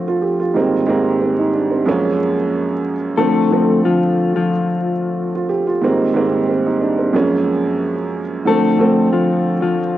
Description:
hip hop; 91 BPM; 4/4; swing 55% on 16ths; A4 = 445 Hz
mellow electric guitar; melody; 0.0-10.0 s; F3 to A4; -17 LUFS; left 4 dB; spring reverb, high-pass filter, low-pass filter, analog delay
dark upright piano; accompaniment; 0.0-10.0 s; Gb2 to G4; -16 LUFS; right 3 dB; cassette tape, high-pass filter, low-pass filter
moderate lush hall reverb, RT60 2.6 s; home recording on cassette, vinyl crackle, nothing above 7.9 kHz; -14 LUFS; side -13 dB against mid
0.0-10.0 A section
0.0 Dm7; 0.6 Abmaj9; 1.9 Gbmaj9; 3.2 Dm7; 5.8 Abmaj9; 7.1 Gbmaj9; 8.5 Dm7
| 0.55 1.21 1.87 2.53 | 3.19 3.85 4.51 5.17 | 5.83 6.49 7.14 7.80 | 8.46 9.12 9.78

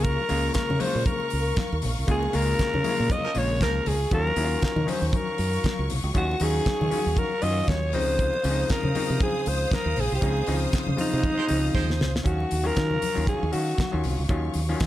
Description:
disco; 118 BPM; 4/4; swing 56% on 16ths; Eb dorian; A4 = 441 Hz
breathy alto saxophone; melody; 0.0-14.0 s; Eb4 to Eb5; -27 LUFS; equal
overdriven clav; accompaniment; 0.0-14.9 s; Db3 to F5; -31 LUFS; left 3 dB
rich studio string section; sustained chords; 0.0-14.9 s; Gb3 to Eb6; -35 LUFS; equal
fingered electric bass; bass; 0.0-14.9 s; Bb1 to Eb3; -26 LUFS; right 1 dB
damped 70s drum kit; drums; 0.0-14.9 s; handclaps, hi-hat, kick drum, snare drum; -28 LUFS; equal
congas; percussion; 0.1-14.9 s; -34 LUFS; left 5 dB
warm horn section; stabs; 3.2-4.0, 11.4-12.1 s; F3 to C5; -34 LUFS; right 4 dB
little or no reverb; -22 LUFS; side -14 dB against mid
0.0-12.3 A section; 12.3-14.9 B section
band accent 2.1-4.1, 10.2-12.3; drum fill 11.7-12.3
0.0 Db6; 4.1 Ebm9; 7.9 Dbmaj9; 12.3 Ebm9
| 0.05 0.56 1.07 1.57 | 2.08 2.59 3.10 3.61 | 4.12 4.62 5.13 5.64 | 6.15 6.66 7.17 7.67 | 8.18 8.69 9.20 9.71 | 10.22 10.73 11.24 11.75 | 12.26 12.77 13.28 13.79 | 14.30 14.81

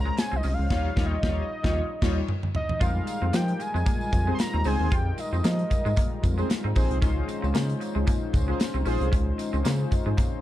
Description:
early-eighties boogie funk; 114 BPM; 4/4; swing 56% on 16ths; F minor; A4 = 444 Hz
fat analog lead; melody; 0.0-6.2 s; Eb5 to C6; -32 LUFS; right 1 dB; slapback echo
chorused polysynth; accompaniment; 0.0-10.4 s; G3 to Db5; -32 LUFS; left 3 dB
rubbery square bass; bass; 0.0-10.1 s; Bb1 to F3; -26 LUFS; equal
twangy electric guitar; riff; 0.1-10.3 s; Ab3 to F4; -37 LUFS; equal; wide subtle chorus
modern studio drum kit; drums; 0.2-10.3 s; crash cymbal, hi-hat, kick drum, snare drum, toms; -26 LUFS; equal
tambourine; percussion; 0.2-10.3 s; -47 LUFS; right 10 dB
analog synth brass; second line; 4.3-9.1 s; C4 to C5; -32 LUFS; equal; chorus
small room ambience; dark, warm production; -23 LUFS; side -14 dB against mid
0.0-2.8 A section; 2.8-10.4 B section
analog synth lead solo 0.0-2.8; band accent 0.7-2.8; drum fill 1.8-2.8
0.0 Dbmaj7; 0.7 Eb9; 2.8 Fm11; 7.0 Dbmaj9
0.18 | 0.71 1.23 1.76 2.29 | 2.81 3.34 3.86 4.39 | 4.92 5.44 5.97 6.50 | 7.02 7.55 8.07 8.60 | 9.13 9.65 10.18

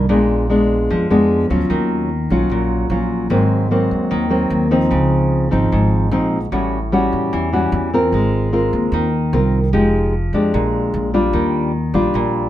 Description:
bossa nova; 149 BPM; 4/4; straight; Eb dorian; A4 = 440 Hz
nylon-string guitar; accompaniment; 0.0-12.5 s; Ab2 to Bb4; -16 LUFS; left 1 dB
upright bass; bass; 0.0-12.5 s; F1 to F2; -19 LUFS; equal
moderate studio reverb, RT60 0.6 s; -14 LUFS; side -13 dB against mid
0.0-1.7 A section; 1.7-12.5 B section
0.1 Bb7b9; 1.7 Ebm9; 3.3 Ab9; 4.9 Dbmaj9; 6.5 A6; 8.1 Ab69; 9.7 Fm9; 10.5 Bb6; 11.3 Ebmaj9
| 0.09 0.50 0.90 1.30 | 1.70 2.10 2.50 2.90 | 3.31 3.71 4.11 4.51 | 4.91 5.32 5.72 6.12 | 6.52 6.92 7.32 7.72 | 8.12 8.53 8.93 9.33 | 9.73 10.13 10.53 10.93 | 11.34 11.74 12.14

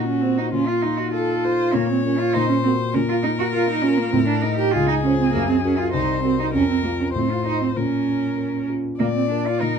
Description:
quick classical-period movement for piano trio; 99 BPM; 2/4; straight; Bb minor; A4 = 440 Hz
warm violin; melody; 0.0-9.8 s; F4 to D5; -27 LUFS; left 7 dB
rich cello; second line; 0.0-9.8 s; Bb3 to G4; -21 LUFS; right 5 dB
dark concert grand piano; accompaniment; 0.0-9.8 s; C2 to Eb5; -23 LUFS; left 4 dB
light reverb; dark, warm production; -18 LUFS; side -6 dB against mid
0.0-9.0 A section
0.0 Ebm6/Bb; 0.5 F7/Bb; 1.7 Bbm; 2.4 Bbsus2; 2.9 Bb5; 4.1 Cm13/A (rootless); 4.7 Dbmaj7; 5.3 Gb; 5.9 Cm7b5; 6.5 Bb5/F; 7.2 F/A; 7.8 Bbm; 9.0 Bb
| 0.54 1.14 | 1.75 2.35 | 2.95 3.54 | 4.14 4.74 | 5.34 5.94 | 6.54 7.15 | 7.76 8.38 | 9.00 9.61

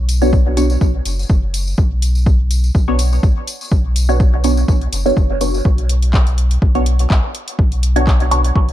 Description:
dub techno; 124 BPM; 4/4; swing 54% on 16ths; B minor; A4 = 440 Hz
pure sine sub bass; bass; 0.0-8.7 s; F#1 to B1; -16 LUFS; equal; sidechain pumping
deep house drum kit; drums; 0.1-8.7 s; handclaps, hi-hat; -25 LUFS; left 1 dB
tambourine; percussion; 0.1-5.6 s; -29 LUFS; left 4 dB
filtered dub chord stab; stabs; 0.2-8.4 s; B3 to C#5; -19 LUFS; right 1 dB; phaser, dub echo
electronic kick drum; drums; 0.3-8.7 s; -14 LUFS; equal
digital ambience; dark, warm production; -13 LUFS; side -13 dB against mid
0.0-5.7 A section; 5.7-8.7 A section
0.0 Bmadd9
0.33 0.81 1.30 | 1.78 2.27 2.75 3.23 | 3.72 4.20 4.68 5.17 | 5.65 6.14 6.62 7.10 | 7.59 8.07 8.55

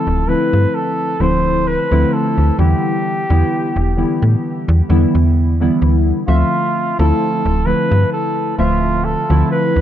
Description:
vaporwave; 65 BPM; 4/4; swing 55% on 16ths; D dorian; A4 = 439 Hz
warm flugelhorn; melody; 0.0-9.8 s; F4 to C5; -20 LUFS; right 1 dB; tape echo
warbly lo-fi synth keys; accompaniment; 0.0-9.8 s; D3 to E5; -17 LUFS; equal; lush chorus
slap-like FM bass; bass; 0.1-9.8 s; D1 to A2; -14 LUFS; equal
light reverb, small room ambience; dark, warm production, cassette tape; -13 LUFS; side -11 dB against mid
0.0-9.8 A section
0.0 Dm9; 2.6 Em7; 6.3 Dm9
0.74 1.66 | 2.59 3.51 4.43 5.36 | 6.28 7.20 8.12 9.05

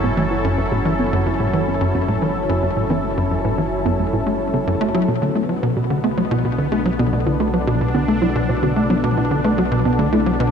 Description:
ambient, sequencer-driven space music; 110 BPM; 4/4; straight; B minor; A4 = 441 Hz
sweeping resonant pad; sustained chords; 0.0-10.5 s; B2 to A4; -22 LUFS; equal; chorus, shimmer reverb
warbly dusty pluck; arpeggios; 0.0-10.5 s; A3 to B4; -25 LUFS; right 2 dB; chorus, auto-pan, ping-pong delay, shimmer reverb
tight sequencer bass; riff; 0.0-10.5 s; F#2 to A3; -20 LUFS; equal; analog chorus, ping-pong delay
fat analog bass; bass; 0.0-10.5 s; F#1 to B1; -28 LUFS; equal
wet plate reverb, RT60 3.3 s; dark, warm production; -17 LUFS; side -7 dB against mid
0.0-10.5 A section
0.0 F#m7; 5.1 Bm7
0.17 | 0.72 1.26 1.81 2.35 | 2.90 3.44 3.99 4.54 | 5.08 5.63 6.17 6.72 | 7.26 7.81 8.35 8.90 | 9.45 9.99

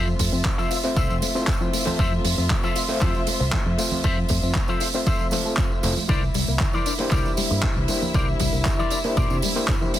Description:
nu-disco, nu disco; 117 BPM; 4/4; straight; F major; A4 = 440 Hz
overdriven reed electric piano; accompaniment; 0.0-10.0 s; A3 to E5; -29 LUFS; left 1 dB; fast tremolo, sidechain pumping, ping-pong delay
dark studio string section; sustained chords; 0.0-10.0 s; E4 to E5; -32 LUFS; left 3 dB; sidechain pumping
soft round pluck; arpeggios; 0.0-10.0 s; D3 to A4; -30 LUFS; left 4 dB; chorus, sidechain pumping, ping-pong delay
electric guitar with an envelope filter; riff; 0.0-10.0 s; E4 to E5; -31 LUFS; left 3 dB; analog chorus, ping-pong delay
fingered electric bass with an envelope filter; bass; 0.0-9.4 s; F1 to C3; -25 LUFS; equal; tube saturation, sidechain pumping
damped 70s drum kit; drums; 0.1-10.0 s; handclaps, hi-hat, tambourine; -27 LUFS; right 3 dB; studio ambience
electronic kick drum; drums; 0.2-9.8 s; -25 LUFS; equal; studio ambience
tambourine and congas; percussion; 0.2-10.0 s; -36 LUFS; right 3 dB
small room ambience; dense, heavily limited modern master; -20 LUFS; side -12 dB against mid
0.0-10.0 A section
0.0 Fmaj7; 6.1 C9
0.45 0.97 1.48 | 1.99 2.51 3.02 3.53 | 4.04 4.56 5.07 5.58 | 6.09 6.61 7.12 7.63 | 8.15 8.66 9.17 9.69

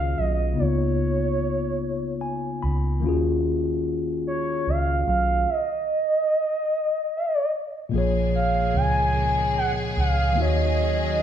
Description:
slow six-eight R&B; 49 BPM (dotted quarters); 6/8; straight; Eb minor; A4 = 440 Hz
gliding portamento lead; melody; 0.0-11.2 s; Db5 to Ab5; -24 LUFS; right 2 dB; chorus, phaser
mellow tine electric piano; accompaniment; 0.0-11.2 s; Bb2 to Cb6; -26 LUFS; left 3 dB
vintage muted fingered electric bass; bass; 0.0-11.2 s; Bb1 to Eb2; -25 LUFS; right 1 dB
warm studio string section; sustained chords; 7.9-11.2 s; Db3 to Ab4; -31 LUFS; equal
wet large studio reverb, RT60 1.3 s; band playing live in one room; -21 LUFS; side -9 dB against mid
0.0-7.9 A section; 7.9-11.2 B section
tine electric piano fill 1.8-3.0
0.0 Ebm11; 0.6 Db13; 3.0 Ebm11; 5.5 N.C.; 7.9 Bbm7; 10.4 Ebm7
| 0.58 1.80 | 3.03 4.25 | 5.48 6.70 | 7.92 9.15 | 10.37

